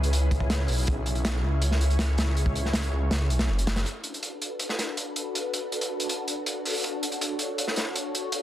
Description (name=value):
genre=drum and bass, jungle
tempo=161 BPM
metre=4/4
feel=straight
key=B dorian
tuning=A4 = 440 Hz
part: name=soft string machine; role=sustained chords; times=0.0-8.4 s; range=C#4 to C#5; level=-32 LUFS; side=left 1 dB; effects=phaser, ensemble chorus
part: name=detuned saw bass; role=bass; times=0.0-3.8 s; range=F#1 to C#2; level=-25 LUFS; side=equal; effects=none
part: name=crunchy breakbeat drum kit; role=drums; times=0.0-8.4 s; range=hi-hat, kick drum, snare drum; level=-29 LUFS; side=equal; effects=high-pass filter on kick, high-pass filter on hats, high-pass filter on snare, high-pass filter on room
room=light reverb, studio ambience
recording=dense, heavily limited modern master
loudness=-25 LUFS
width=side -12 dB against mid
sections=0.0-3.9 A section; 3.9-8.4 B section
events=filter sweep on string machine 3.9-8.4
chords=0.0 C#m7/B; 3.9 Bm7